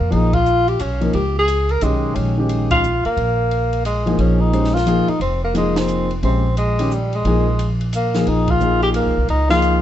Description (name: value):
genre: modal jazz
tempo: 177 BPM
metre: 3/4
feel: swing 64% on 8ths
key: Bb dorian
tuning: A4 = 440 Hz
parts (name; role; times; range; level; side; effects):
- warm tenor saxophone; melody; 0.0-9.8 s; G3 to Bb4; -19 LUFS; left 1 dB; none
- upright bass; bass; 0.0-9.8 s; F1 to F2; -19 LUFS; equal; none
- warm concert grand piano; accompaniment; 0.1-9.8 s; Eb3 to C5; -21 LUFS; left 2 dB; none
- compact cocktail drum kit; drums; 0.1-9.7 s; hi-hat, kick drum, ride cymbal, snare drum; -30 LUFS; right 2 dB; none
room: light reverb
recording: dark, warm production, nothing above 8.0 kHz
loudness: -15 LUFS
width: side -11 dB against mid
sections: 0.0-9.8 A section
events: band accent 0.3, 2.7, 5.7, 8.4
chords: 0.0 Bbm11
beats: | 0.12 0.46 0.80 | 1.14 1.48 1.82 | 2.16 2.50 2.84 | 3.17 3.52 3.85 | 4.19 4.53 4.87 | 5.21 5.55 5.89 | 6.23 6.57 6.91 | 7.25 7.59 7.93 | 8.27 8.61 8.95 | 9.29 9.63